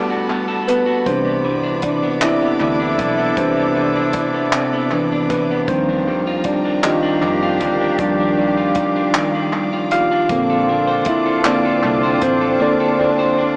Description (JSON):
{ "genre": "slow six-eight R&B", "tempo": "52 BPM (dotted quarters)", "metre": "6/8", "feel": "straight", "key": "unclear", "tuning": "A4 = 440 Hz", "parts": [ { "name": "electric guitar at the edge of break-up", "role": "second line", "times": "0.0-13.6 s", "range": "C3 to C5", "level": "-24 LUFS", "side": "equal", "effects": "analog delay" }, { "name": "tine electric piano", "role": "accompaniment", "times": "0.0-13.6 s", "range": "C3 to F5", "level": "-20 LUFS", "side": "equal", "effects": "overdrive, analog delay" }, { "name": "warm studio string section", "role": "sustained chords", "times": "0.0-13.6 s", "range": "A4 to D6", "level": "-29 LUFS", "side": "equal", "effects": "none" }, { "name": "mellow horn section", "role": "stabs", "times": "0.0-13.6 s", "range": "G3 to A4", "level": "-25 LUFS", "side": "equal", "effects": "analog delay" }, { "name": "compact cocktail drum kit", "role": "drums", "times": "0.7-12.4 s", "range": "handclaps, hi-hat, kick drum", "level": "-27 LUFS", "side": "equal", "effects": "analog delay" }, { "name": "vintage muted fingered electric bass", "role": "bass", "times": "1.1-12.6 s", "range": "A1 to F2", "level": "-32 LUFS", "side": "equal", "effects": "none" } ], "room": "moderate plate reverb, RT60 3.1 s", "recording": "echo-heavy mix, small speaker sound", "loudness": "-17 LUFS", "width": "mono", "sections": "0.0-13.6 A section", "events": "tine electric piano solo 0.0-13.6", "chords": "0.0 Gmaj9; 1.1 Cmaj9; 5.7 Ebmaj9; 10.3 Bbmaj9" }